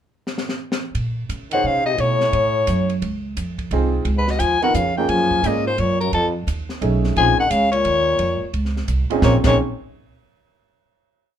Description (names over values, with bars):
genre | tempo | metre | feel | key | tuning
jazz, small-group swing and bop | 174 BPM | 3/4 | swing 64% on 8ths | Bb minor | A4 = 440 Hz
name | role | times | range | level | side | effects
compact cocktail drum kit | drums | 0.3-9.5 s | crash cymbal, hi-hat, kick drum, ride cymbal, snare drum | -27 LUFS | equal | none
upright bass | bass | 0.9-9.6 s | Bb1 to Db3 | -22 LUFS | right 1 dB | none
growling soprano saxophone | melody | 1.5-9.6 s | A4 to Ab5 | -19 LUFS | left 3 dB | none
bright trombone | second line | 1.5-9.6 s | F2 to Bb3 | -26 LUFS | right 1 dB | none
clear concert grand piano | accompaniment | 1.5-9.6 s | Bb2 to Db5 | -22 LUFS | right 3 dB | none
room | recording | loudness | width
moderate club reverb, RT60 0.7 s | minimal, uncompressed stereo recording | -17 LUFS | side -10 dB against mid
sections
0.0-1.0 pickup bar; 1.0-9.2 A section; 9.2-10.3 final chord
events
drum fill 0.3-1.0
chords
0.0 N.C.; 1.0 Bbm11; 2.0 Bsus2; 3.0 Dbmaj7; 4.1 Db13; 5.1 Gbmaj9; 6.1 F7alt; 7.2 Bbm11